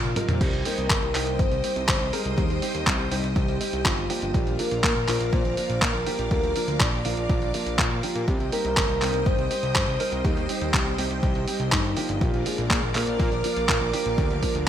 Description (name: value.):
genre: italo disco.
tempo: 122 BPM.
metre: 4/4.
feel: straight.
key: C minor.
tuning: A4 = 441 Hz.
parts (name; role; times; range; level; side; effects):
soft octave-layered synth lead; melody; 0.0-14.7 s; Eb4 to D5; -29 LUFS; equal; chorus, tremolo, cassette tape, digital delay.
string machine, full ensemble; sustained chords; 0.0-14.7 s; Bb4 to Eb6; -34 LUFS; equal; ensemble chorus, vintage 12-bit sampler grit.
dark concert grand piano; stabs; 0.0-14.7 s; F3 to Bb4; -31 LUFS; right 1 dB; analog chorus.
fat analog bass; bass; 0.0-14.7 s; G1 to Bb2; -29 LUFS; equal; none.
dusty soul sampler-style drum kit; drums; 0.0-14.6 s; crash cymbal, handclaps, hi-hat, toms; -27 LUFS; equal; gated reverb.
electronic kick drum; drums; 0.4-14.5 s; none; -26 LUFS; equal; overdrive.
room: moderate plate reverb, RT60 1.4 s.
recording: bright 1980s-style digital production.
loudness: -22 LUFS.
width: side -10 dB against mid.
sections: 0.4-14.7 A section.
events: drum fill 0.0-0.4.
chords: 0.4 Cm; 4.3 Bb; 8.3 Cm; 12.2 Bb.